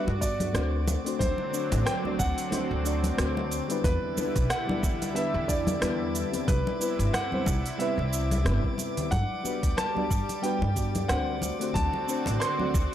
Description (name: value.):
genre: sunset chillout.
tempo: 91 BPM.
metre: 4/4.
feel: swing 56% on 16ths.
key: unclear.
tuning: A4 = 442 Hz.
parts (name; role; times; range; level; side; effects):
mellow FM electric piano; accompaniment; 0.0-12.8 s; G3 to D5; -32 LUFS; moving between left 6 dB and right 3 dB; chorus, auto-pan, tape echo.
lush unison pad; sustained chords; 0.0-12.9 s; C3 to F#4; -35 LUFS; equal; chorus.
drifting glass-harmonics texture; texture; 0.0-12.9 s; D5 to D6; -40 LUFS; right 2 dB; chorus, built-in reverb.
upright bass; bass; 0.1-12.9 s; G1 to G2; -29 LUFS; equal; none.
congas; percussion; 0.1-12.9 s; none; -34 LUFS; left 1 dB; none.
warm concert grand piano; melody; 0.2-12.9 s; B4 to C6; -33 LUFS; equal; tape echo.
electronic kick drum; drums; 0.2-12.9 s; none; -29 LUFS; equal; none.
smooth R&B drum kit; drums; 0.2-12.9 s; cabasa, hi-hat, rim click; -35 LUFS; right 2 dB; none.
room: light reverb.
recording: dry, gritty hardware recording.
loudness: -25 LUFS.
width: side -11 dB against mid.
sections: 0.0-12.9 A section.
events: none.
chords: 0.0 Gmaj7; 0.9 D7; 3.8 Em7; 6.5 Cmaj7; 9.1 Gmaj7; 11.4 D7.